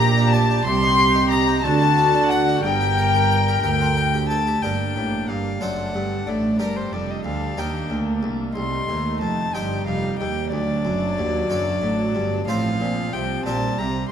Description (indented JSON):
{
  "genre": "classical, baroque-style concerto movement with solo episodes",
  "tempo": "61 BPM (dotted quarters)",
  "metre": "6/8",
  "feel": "straight",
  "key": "G minor",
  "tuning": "A4 = 440 Hz",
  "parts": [
    { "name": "rich chamber violin section", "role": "melody", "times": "0.0-14.1 s", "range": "F4 to C6", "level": "-30 LUFS", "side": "left 7 dB", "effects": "none" },
    { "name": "rich violin", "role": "melody", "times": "0.0-14.1 s", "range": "Bb4 to C6", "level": "-25 LUFS", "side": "left 4 dB", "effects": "none" },
    { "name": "warm chamber violin section", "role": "second line", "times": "0.0-14.1 s", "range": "C4 to C6", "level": "-28 LUFS", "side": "left 2 dB", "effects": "none" },
    { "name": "dark chamber viola section", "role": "accompaniment", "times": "0.0-14.1 s", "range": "F3 to Bb4", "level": "-27 LUFS", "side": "equal", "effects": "none" },
    { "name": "harpsichord", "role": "accompaniment", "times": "0.0-14.1 s", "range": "C2 to G5", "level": "-28 LUFS", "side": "equal", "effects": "none" },
    { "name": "dark chamber cello section", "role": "bass", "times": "0.0-14.1 s", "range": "C2 to D3", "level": "-26 LUFS", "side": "right 4 dB", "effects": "none" },
    { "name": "rich chamber double bass section", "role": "bass", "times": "0.0-14.1 s", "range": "F1 to Eb2", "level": "-26 LUFS", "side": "right 4 dB", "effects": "none" }
  ],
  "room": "moderate concert hall reverb, RT60 2.0 s",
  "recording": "none",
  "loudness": "-19 LUFS",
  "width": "side -8 dB against mid",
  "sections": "0.0-4.6 A section; 4.6-14.1 B section",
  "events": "none",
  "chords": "0.0 Gm/Bb; 0.7 Cm7; 1.6 D; 2.6 Gm; 5.6 D7/F#; 6.6 Gm; 7.6 Eb; 8.6 Cm; 10.5 D; 12.5 F/A; 13.5 Bb",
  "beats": "| 0.66 1.64 | 2.63 3.63 | 4.63 5.61 | 6.60 7.58 | 8.56 9.54 | 10.52 11.49 | 12.47 13.45"
}